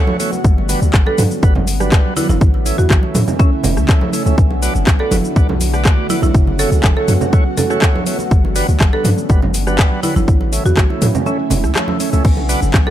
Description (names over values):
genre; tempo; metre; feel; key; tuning
afro house; 122 BPM; 4/4; straight; B minor; A4 = 440 Hz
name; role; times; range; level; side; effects
ethereal airy pad; sustained chords; 0.1-12.9 s; C#3 to F#4; -27 LUFS; equal; ensemble chorus, built-in reverb, phaser, sidechain pumping
handpan; arpeggios; 0.0-12.9 s; C#3 to A4; -23 LUFS; right 1 dB; sidechain pumping, dub echo
tonewheel organ; stabs; 0.0-12.9 s; G3 to D5; -24 LUFS; right 2 dB; slow rotary speaker, sidechain pumping, dub echo
congas; percussion; 0.1-12.9 s; none; -22 LUFS; right 3 dB; none
house drum kit; drums; 0.2-12.8 s; crash cymbal, handclaps, hi-hat, rim click, shaker; -22 LUFS; left 1 dB; overdrive
warm 808-style bass; bass; 0.4-12.8 s; E1 to A2; -17 LUFS; equal; sidechain pumping
electronic kick drum; drums; 0.4-12.8 s; none; -12 LUFS; equal; overdrive
buzzing marimba with medium hard mallets; melody; 1.1-12.9 s; C#4 to A4; -24 LUFS; right 2 dB; dub echo
room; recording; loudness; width
little or no reverb; none; -12 LUFS; side -12 dB against mid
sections
0.0-12.9 A section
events
kick drops out 11.3-12.2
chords
0.4 Gmaj7; 2.4 A; 4.4 Bm; 6.3 F#m7; 8.3 Gmaj7; 10.3 A; 12.2 Bm